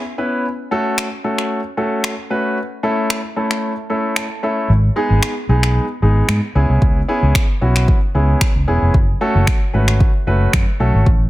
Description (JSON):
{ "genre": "dance-pop", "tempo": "113 BPM", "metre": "4/4", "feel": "straight", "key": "unclear", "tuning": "A4 = 440 Hz", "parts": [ { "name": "warm concert grand piano", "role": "accompaniment", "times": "0.0-11.1 s", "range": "G#3 to A5", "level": "-19 LUFS", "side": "equal", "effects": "sidechain pumping" }, { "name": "deep house drum kit", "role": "drums", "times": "1.0-11.2 s", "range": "finger snaps, kick drum", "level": "-17 LUFS", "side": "equal", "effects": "overdrive, soft clipping on snare" }, { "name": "vintage muted fingered electric bass", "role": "bass", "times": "4.7-11.3 s", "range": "E1 to G#2", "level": "-14 LUFS", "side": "equal", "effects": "sidechain pumping" } ], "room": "light reverb", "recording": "dense, heavily limited modern master", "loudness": "-14 LUFS", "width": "side -17 dB against mid", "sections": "0.0-11.3 A section", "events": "grand piano fill 0.0-0.4, 3.9-4.7", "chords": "0.4 F#m; 2.6 A; 4.7 G#m; 6.6 C#m7; 8.9 F#m" }